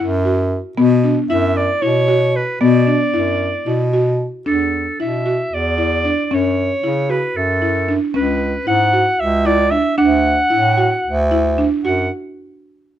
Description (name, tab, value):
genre	contemporary instrumental, chamber music in an uneven meter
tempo	228 BPM (eighths)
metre	7/8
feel	straight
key	F# minor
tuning	A4 = 441 Hz
part	breathy clarinet	melody	0.0-12.1 s	A4 to F#5	-18 LUFS	right 1 dB	none
part	buzzing marimba with soft mallets	arpeggios	0.0-12.1 s	B3 to F#4	-19 LUFS	left 1 dB	none
part	warm bass clarinet	bass	0.0-12.1 s	C#2 to C#3	-19 LUFS	right 1 dB	none
room	light reverb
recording	none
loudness	-14 LUFS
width	side -11 dB against mid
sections	0.0-4.5 A section; 4.5-11.8 B section; 11.8-13.0 C section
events	none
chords	0.0 F#5; 0.8 Bm; 4.5 E7sus4; 6.3 F#m7; 8.2 C#m7; 10.0 D; 11.8 N.C.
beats	0.00 0.26 0.52 | 0.78 1.04 1.30 1.56 1.82 2.09 2.35 | 2.61 2.87 3.14 3.40 3.67 3.93 4.20 | 4.47 4.73 5.00 5.26 5.52 5.79 6.05 | 6.31 6.57 6.83 7.10 7.36 7.62 7.89 | 8.15 8.41 8.67 8.94 9.20 9.46 9.72 | 9.99 10.25 10.51 10.78 11.05 11.31 11.58 | 11.85